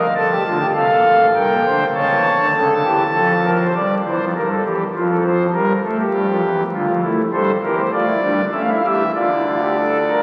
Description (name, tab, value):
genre	classical, baroque-style 3-part fugue for pipe organ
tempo	100 BPM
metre	3/4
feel	straight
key	G minor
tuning	A4 = 441 Hz
part	pipe organ, foundations	solo	0.0-10.2 s	F1 to A5	-17 LUFS	equal	none
room	wet cathedral reverb, RT60 6.3 s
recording	very old 78 rpm record, vinyl crackle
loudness	-17 LUFS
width	mono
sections	0.0-3.8 A section; 3.8-10.2 B section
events	none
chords	0.2 Dm/F; 1.3 Gm; 1.9 A/C#; 3.1 Fadd11; 3.8 Gm; 5.0 F; 5.5 Edim/G; 6.7 Dm; 7.3 Edim/G; 7.9 Dm/A; 8.5 A7; 9.2 Dm